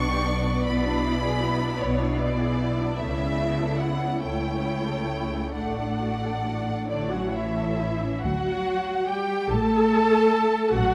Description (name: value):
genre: classical, slow romantic movement for string orchestra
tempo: 43-53 BPM (dotted quarters)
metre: 6/8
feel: rubato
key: D major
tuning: A4 = 444 Hz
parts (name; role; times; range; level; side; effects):
- rich studio violin section; melody; 0.0-10.9 s; C#5 to C#6; -35 LUFS; equal; none
- dark symphonic violin section; second line; 0.0-10.9 s; A3 to A5; -33 LUFS; equal; none
- dark symphonic viola section; accompaniment; 0.0-10.9 s; A3 to A4; -29 LUFS; equal; none
- clear symphonic double bass section; bass; 0.0-10.9 s; A1 to D2; -32 LUFS; equal; none
- rich symphonic cello section; bass; 0.0-10.9 s; A2 to A3; -32 LUFS; equal; none
room: moderate scoring stage reverb, RT60 1.9 s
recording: none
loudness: -25 LUFS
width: mono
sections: 0.0-8.2 A section; 8.2-10.9 B section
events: none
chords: 0.0 G/B; 0.7 E7(no3)/B; 3.0 A/C#; 5.6 D/A; 6.9 A; 8.2 D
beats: | 0.66 1.80 | 2.99 4.23 | 5.56 6.91 | 8.23 9.51 | 10.75